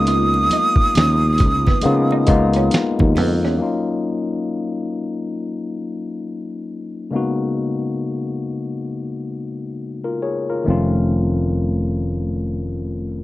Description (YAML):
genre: R&B, neo-soul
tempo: 68 BPM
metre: 4/4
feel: swing 61% on 16ths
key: Eb minor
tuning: A4 = 438 Hz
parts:
  - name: breathy jazz flute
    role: melody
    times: 0.0-2.7 s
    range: Eb6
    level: -19 LUFS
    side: right 2 dB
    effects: none
  - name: barky tine electric piano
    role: accompaniment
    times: 0.0-13.2 s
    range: Db3 to Db5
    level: -22 LUFS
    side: left 3 dB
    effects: overdrive
  - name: sustaining fretless electric bass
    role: bass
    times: 0.0-3.6, 10.7-13.2 s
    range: F1 to Db3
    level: -19 LUFS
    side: equal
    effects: none
  - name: electric guitar through a small old amp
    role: second line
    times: 0.1-3.6 s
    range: Cb4 to F4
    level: -26 LUFS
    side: right 6 dB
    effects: wide subtle chorus
  - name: dusty soul sampler-style drum kit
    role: drums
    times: 0.1-3.5 s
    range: hi-hat, kick drum, snare drum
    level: -18 LUFS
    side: equal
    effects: none
  - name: congas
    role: percussion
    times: 0.3-3.4 s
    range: none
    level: -29 LUFS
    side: right 2 dB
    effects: none
room: little or no reverb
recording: dry, close 1970s-style studio recording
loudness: -17 LUFS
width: side -16 dB against mid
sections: 0.0-3.6 A section; 3.6-13.2 B section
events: none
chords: 0.0 Db13; 3.6 Ebm9; 7.1 Db13sus4; 10.7 F7b13